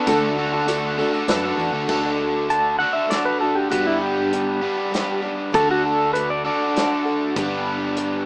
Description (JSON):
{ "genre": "folk rock and heartland rock", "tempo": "99 BPM", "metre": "3/4", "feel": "straight", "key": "D major", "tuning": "A4 = 440 Hz", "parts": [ { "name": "dark cello", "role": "melody", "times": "0.0-1.6 s", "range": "A3", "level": "-30 LUFS", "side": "equal", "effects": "none" }, { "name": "picked plugged-in twelve-string acoustic guitar", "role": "accompaniment", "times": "0.0-8.3 s", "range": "G2 to B4", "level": "-26 LUFS", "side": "equal", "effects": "none" }, { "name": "crunchy overdriven guitar", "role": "riff", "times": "0.0-8.3 s", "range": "D3 to B4", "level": "-22 LUFS", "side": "equal", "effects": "spring reverb" }, { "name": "clear upright piano", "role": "accompaniment", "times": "0.1-1.7 s", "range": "D4 to B4", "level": "-26 LUFS", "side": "equal", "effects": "none" }, { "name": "picked electric bass", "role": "bass", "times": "0.1-8.3 s", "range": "G1 to F#2", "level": "-33 LUFS", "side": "equal", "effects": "none" }, { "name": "natural country drum kit", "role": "drums", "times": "0.1-8.1 s", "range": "crash cymbal, hi-hat, kick drum, snare drum", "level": "-27 LUFS", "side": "equal", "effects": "none" }, { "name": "tambourine", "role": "percussion", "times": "0.1-1.7 s", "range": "none", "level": "-38 LUFS", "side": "equal", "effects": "none" }, { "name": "pedal steel guitar", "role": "second line", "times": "2.5-8.2 s", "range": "E4 to A5", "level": "-21 LUFS", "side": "equal", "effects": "none" } ], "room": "light reverb", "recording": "rough home demo mix, small speaker sound", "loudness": "-18 LUFS", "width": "side -28 dB against mid", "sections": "0.0-1.9 A section; 1.9-8.3 B section", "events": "pedal steel guitar solo 1.9-8.3", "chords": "0.0 D; 3.7 G; 5.5 D; 7.4 G" }